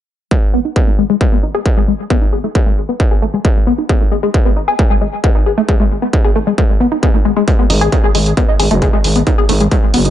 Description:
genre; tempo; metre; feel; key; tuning
driving peak-time techno; 134 BPM; 4/4; straight; G# phrygian; A4 = 440 Hz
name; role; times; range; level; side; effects
tight sequenced synth; riff; 0.3-10.1 s; G#3 to G#4; -16 LUFS; left 2 dB; chorus, phaser, overdrive, sidechain pumping, dub echo
electronic kick drum; drums; 0.3-9.8 s; none; -12 LUFS; equal; distortion
electronic hi-hat; drums; 7.5-10.1 s; none; -20 LUFS; right 2 dB; sidechain pumping on hats, low-pass filter on hats
growling FM bass; bass; 7.7-10.1 s; F#1 to G#1; -14 LUFS; equal; sidechain pumping
room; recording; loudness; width
little or no reverb; echo-heavy mix, nothing above 11.0 kHz; -11 LUFS; side -12 dB against mid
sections
0.3-10.1 A section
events
filter sweep on synth arpeggio sound 0.3-10.1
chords
0.3 G#m

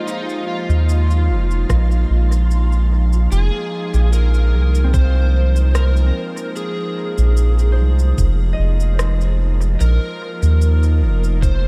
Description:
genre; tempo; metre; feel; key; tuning
ambient dub; 74 BPM; 4/4; straight; F minor; A4 = 440 Hz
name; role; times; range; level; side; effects
overdriven slide guitar; melody; 0.0-11.7 s; Eb4 to C5; -30 LUFS; equal; ensemble chorus, dub echo
airy breathy pad; sustained chords; 0.0-11.7 s; F3 to Eb4; -30 LUFS; equal; chorus
Celtic harp; arpeggios; 0.0-11.7 s; C4 to F5; -36 LUFS; equal; analog delay
backwards swelling texture; texture; 0.0-3.3 s; F4 to F5; -37 LUFS; equal; built-in reverb, subtle chorus
electronic cabasa and rim click; drums; 0.1-11.6 s; none; -35 LUFS; equal; dub echo
soft dub sub bass; bass; 0.7-11.7 s; F1 to Eb2; -16 LUFS; equal; none
electronic kick drum; drums; 1.7-11.6 s; none; -20 LUFS; equal; none
room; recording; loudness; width
light reverb; none; -17 LUFS; mono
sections
0.0-3.3 A section; 3.3-11.7 B section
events
none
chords
0.0 Fm

